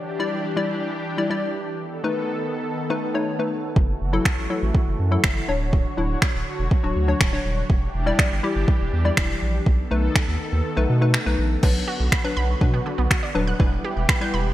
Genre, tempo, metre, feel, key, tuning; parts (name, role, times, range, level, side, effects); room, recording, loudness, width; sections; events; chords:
dance-pop; 122 BPM; 4/4; straight; A4 = 440 Hz
lush unison pad; sustained chords; 0.0-14.5 s; D3 to C#5; -30 LUFS; equal; chorus, phaser, sidechain pumping
hollow square pluck; accompaniment; 0.2-14.5 s; F#3 to D5; -26 LUFS; left 3 dB; chorus, sidechain pumping
saturated sub bass; bass; 3.8-14.5 s; D1 to B2; -23 LUFS; equal; sidechain pumping
smooth R&B drum kit; drums; 3.8-14.2 s; crash cymbal, finger snaps, kick drum; -21 LUFS; equal; overdrive, gated reverb
wide unison pluck; arpeggios; 11.6-14.4 s; D3 to G6; -30 LUFS; right 4 dB; sidechain pumping, digital delay
light reverb, digital ambience; bright 1980s-style digital production; -20 LUFS; side -14 dB against mid
0.0-11.6 A section; 11.6-14.5 B section
kick muted 10.6-11.6
0.0 Em7; 1.8 B7; 3.8 F#m7; 5.5 Dmaj7; 7.7 Em7; 9.7 B7; 11.6 Bm; 13.6 Em